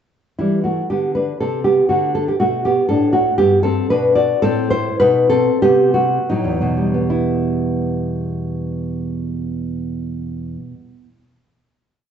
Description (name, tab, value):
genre	classical, baroque-style dance for nylon-string guitar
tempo	72-123 BPM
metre	3/4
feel	rubato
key	E minor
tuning	A4 = 440 Hz
part	nylon-string guitar	solo	0.4-11.2 s	E2 to D5	-15 LUFS	equal	none
room	wet recital hall reverb, RT60 1.3 s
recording	nothing above 8.0 kHz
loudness	-15 LUFS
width	side -8 dB against mid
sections	0.4-7.1 A section; 7.1-11.7 final chord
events	slowing down 2.7-7.1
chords	0.4 Em; 1.9 D5; 3.4 G; 4.4 Am; 5.0 B7; 7.1 Em